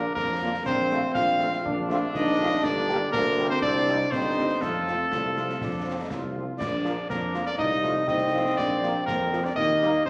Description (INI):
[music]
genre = military-style march for wind band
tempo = 121 BPM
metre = 2/4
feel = straight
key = unclear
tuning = A4 = 439 Hz
[part]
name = warm cornet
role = melody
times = 0.0-10.1 s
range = A4 to F5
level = -29 LUFS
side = equal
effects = none
[part]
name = dark euphonium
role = second line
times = 0.0-10.1 s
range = A3 to F4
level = -34 LUFS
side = equal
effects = none
[part]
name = bright trombone section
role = sustained chords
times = 0.0-10.1 s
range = Bb3 to F4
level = -34 LUFS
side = equal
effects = none
[part]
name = warm tuba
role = bass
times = 0.0-10.1 s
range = G1 to F2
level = -33 LUFS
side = equal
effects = none
[part]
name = concert snare drum, concert bass drum and clash cymbals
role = drums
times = 0.2-10.1 s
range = none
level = -39 LUFS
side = equal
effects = none
[part]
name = clear French horn section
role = accompaniment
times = 0.4-9.9 s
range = F3 to G4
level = -36 LUFS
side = equal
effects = none
[sound]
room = wet large studio reverb, RT60 1.4 s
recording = none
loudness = -26 LUFS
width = mono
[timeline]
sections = 0.0-10.1 A section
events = none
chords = 0.0 Bb; 0.7 F/Bb; 2.6 Gm; 3.6 Cm; 4.6 F; 6.6 Bb; 7.6 F7/C; 8.6 Bb; 9.6 Eb